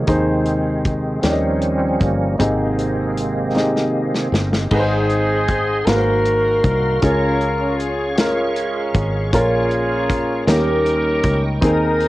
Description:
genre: slow gospel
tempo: 52 BPM (dotted quarters)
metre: 6/8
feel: straight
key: Ab major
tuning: A4 = 440 Hz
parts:
  - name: warm grand piano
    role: accompaniment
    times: 0.0-12.1 s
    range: Ab2 to F5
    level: -21 LUFS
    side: equal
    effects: cassette tape, plate reverb
  - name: bright tonewheel organ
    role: sustained chords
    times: 0.0-12.1 s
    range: C3 to Eb6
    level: -23 LUFS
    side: right 1 dB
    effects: slow rotary speaker, chorus vibrato, cassette tape, plate reverb
  - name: fingered electric bass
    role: bass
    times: 0.0-12.1 s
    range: G1 to Eb2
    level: -22 LUFS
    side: equal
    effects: none
  - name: natural country drum kit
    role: drums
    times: 0.1-12.1 s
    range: crash cymbal, hi-hat, kick drum, snare drum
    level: -22 LUFS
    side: equal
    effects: cassette tape
  - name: mellow horn section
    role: melody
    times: 4.7-12.1 s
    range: Ab3 to Bb4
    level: -19 LUFS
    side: equal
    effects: cassette tape, plate reverb
room: moderate booth ambience, RT60 0.3 s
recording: home recording on cassette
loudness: -16 LUFS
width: side -17 dB against mid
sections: 0.0-4.7 A section; 4.7-12.1 B section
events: tonewheel organ solo 0.0-4.7; drum fill 3.6-4.7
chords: 0.1 Ab/Eb; 1.2 Eb7; 2.4 Abmaj7; 4.7 Ab; 5.9 Ab13; 7.0 Db; 9.3 Bbm; 10.5 Eb7

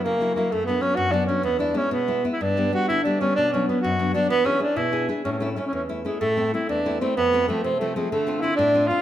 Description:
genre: italian folk, Italian serenade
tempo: 127 BPM (dotted quarters)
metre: 6/8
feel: rubato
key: A major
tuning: A4 = 439 Hz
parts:
  - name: mellow tenor saxophone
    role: melody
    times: 0.0-9.0 s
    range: G#3 to F#4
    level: -22 LUFS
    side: right 1 dB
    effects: none
  - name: nylon-string guitar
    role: accompaniment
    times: 0.0-9.0 s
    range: E2 to G#4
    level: -26 LUFS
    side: left 2 dB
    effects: none
room: wet recital hall reverb, RT60 1.4 s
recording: none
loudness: -20 LUFS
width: side -12 dB against mid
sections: 0.0-6.2 A section; 6.2-9.0 B section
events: none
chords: 0.0 F#7; 0.5 Bm/F#; 1.4 E; 2.4 G; 3.4 Bm; 4.3 E7; 5.2 A; 6.2 Am; 7.2 F; 8.1 Dm7

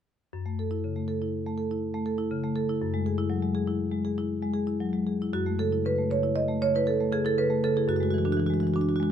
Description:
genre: classical, contemporary piece for solo marimba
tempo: 120 BPM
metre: 5/4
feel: rubato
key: F# minor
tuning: A4 = 440 Hz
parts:
  - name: marimba with medium hard mallets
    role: solo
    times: 0.3-9.1 s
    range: F#2 to D#5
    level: -25 LUFS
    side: equal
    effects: none
room: light reverb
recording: dark, warm production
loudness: -25 LUFS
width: side -9 dB against mid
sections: 0.3-5.3 A section; 5.3-9.1 B section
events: none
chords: 0.3 F#m7; 2.8 Eadd9/F#; 5.3 F#m7; 7.9 E9/F#

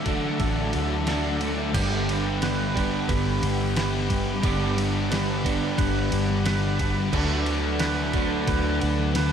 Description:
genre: rock, shoegaze and dream pop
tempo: 89 BPM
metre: 4/4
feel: straight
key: G major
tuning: A4 = 442 Hz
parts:
  - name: sweeping resonant pad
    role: sustained chords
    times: 0.0-9.3 s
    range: A4 to D6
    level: -35 LUFS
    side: right 1 dB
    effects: chorus
  - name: twangy electric guitar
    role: arpeggios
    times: 0.0-9.3 s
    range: G4 to B4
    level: -33 LUFS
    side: right 8 dB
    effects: lush chorus, analog delay
  - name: overdriven electric guitar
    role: riff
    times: 0.0-9.3 s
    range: G2 to F#4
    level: -30 LUFS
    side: right 1 dB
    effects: analog chorus
  - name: overdriven semi-hollow guitar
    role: riff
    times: 0.0-9.3 s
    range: G2 to G4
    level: -30 LUFS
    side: right 7 dB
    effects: reverse reverb
  - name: thick fuzz guitar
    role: riff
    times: 0.0-9.3 s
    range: G2 to F#4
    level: -29 LUFS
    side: left 8 dB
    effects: distortion, analog chorus
  - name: detuned 8-bit digital drum machine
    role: drums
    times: 0.1-9.3 s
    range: crash cymbal, kick drum, ride cymbal, snare drum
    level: -30 LUFS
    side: equal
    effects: none
  - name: vintage muted fingered electric bass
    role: bass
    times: 0.4-9.3 s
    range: G1 to D2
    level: -28 LUFS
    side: equal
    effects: none
room: moderate plate reverb, RT60 2.5 s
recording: dreamy mix soaked in reverb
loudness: -22 LUFS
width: side -8 dB against mid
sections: 0.0-1.7 A section; 1.7-9.3 B section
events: none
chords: 0.0 Dadd9; 1.7 Gmaj7; 7.1 D6

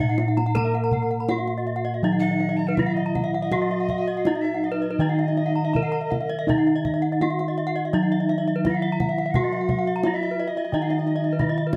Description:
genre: Balinese gamelan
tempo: 82 BPM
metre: 4/4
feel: uneven beats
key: Eb pelog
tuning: A4 = 440 Hz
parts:
  - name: gamelan-type bronze metallophone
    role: melody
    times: 0.0-11.8 s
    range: Eb4 to Bb4-30c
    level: -29 LUFS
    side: equal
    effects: none
  - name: breathy alto recorder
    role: second line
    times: 0.0-11.7 s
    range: Eb5 to Bb5-29c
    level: -35 LUFS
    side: equal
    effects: none
  - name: gamelan-type bronze metallophone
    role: accompaniment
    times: 0.0-11.8 s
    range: Eb3 to Eb4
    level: -33 LUFS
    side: equal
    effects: none
  - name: gamelan-type bronze metallophone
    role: arpeggios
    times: 0.0-11.8 s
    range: Eb5 to Bb5-30c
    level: -34 LUFS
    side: equal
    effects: none
  - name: gamelan-type bossed gongs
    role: bass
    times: 0.0-11.8 s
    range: Bb2-30c to Bb4-30c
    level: -28 LUFS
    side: equal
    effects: none
  - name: kendang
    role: percussion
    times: 0.0-11.8 s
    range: none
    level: -31 LUFS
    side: equal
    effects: none
  - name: gamelan-type bronze metallophone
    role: arpeggios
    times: 0.1-11.7 s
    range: Cb5-20c to Cb6-20c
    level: -34 LUFS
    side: equal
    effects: none
room: light reverb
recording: none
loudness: -23 LUFS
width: mono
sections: 0.0-11.8 A section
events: drum fill 0.0-0.6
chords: none

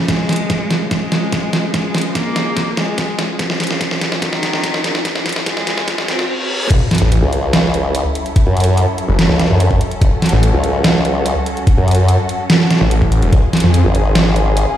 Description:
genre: heavy wobble dubstep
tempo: 145 BPM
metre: 4/4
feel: half-time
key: unclear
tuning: A4 = 440 Hz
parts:
  - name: clear studio string section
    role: sustained chords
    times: 0.0-14.8 s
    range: C#2 to A4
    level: -23 LUFS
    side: equal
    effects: sidechain pumping, low-pass filter
  - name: clear cello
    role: melody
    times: 0.1-6.3 s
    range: D#3 to B#3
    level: -22 LUFS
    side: equal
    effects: ping-pong delay
  - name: dubstep drum kit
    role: drums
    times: 0.1-14.7 s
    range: crash cymbal, hi-hat, snare drum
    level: -17 LUFS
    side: right 1 dB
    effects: none
  - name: electronic kick drum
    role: drums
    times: 0.1-13.4 s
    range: none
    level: -14 LUFS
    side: equal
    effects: none
  - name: riser, reverse cymbal and sub drop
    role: sound effects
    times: 3.1-8.4 s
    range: none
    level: -24 LUFS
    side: equal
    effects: none
  - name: formant-sweep wobble bass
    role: bass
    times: 6.7-14.7 s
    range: F#1 to F#2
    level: -14 LUFS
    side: equal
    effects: chorus, overdrive
  - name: snarling distorted saw bass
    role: bass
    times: 7.0-13.8 s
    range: E1 to E#2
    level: -12 LUFS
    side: equal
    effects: distortion, overdrive
room: light reverb, digital ambience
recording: played on a big sound system in a bare room, large studio reverb, high-pass filter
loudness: -13 LUFS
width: side -11 dB against mid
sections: 0.0-6.7 A section; 6.7-14.8 B section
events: build-up 0.0-6.7; drum fill 0.0-6.3; filter sweep on cello 0.0-6.7; filter sweep 0.0-6.7; riser 3.1-6.3; reverse cymbal 5.9-6.7; drop 6.7-14.8; impact 6.7-8.4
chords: 0.1 C#; 6.7 F#m7; 13.3 C#

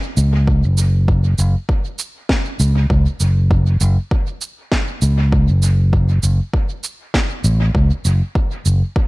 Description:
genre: ambient dub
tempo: 99 BPM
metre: 4/4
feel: swing 58% on 16ths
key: F# minor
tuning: A4 = 440 Hz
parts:
  - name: fingered electric bass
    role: bass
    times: 0.2-8.8 s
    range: F#1 to C#2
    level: -13 LUFS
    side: equal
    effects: none
  - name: electronic shaker and snare drum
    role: drums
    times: 0.2-8.8 s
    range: none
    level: -25 LUFS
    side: right 1 dB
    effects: dub echo
  - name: electronic kick drum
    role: drums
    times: 0.5-9.1 s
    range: none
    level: -18 LUFS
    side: equal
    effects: overdrive
room: little or no reverb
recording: none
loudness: -14 LUFS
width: side -22 dB against mid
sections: 0.0-9.1 A section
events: none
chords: none

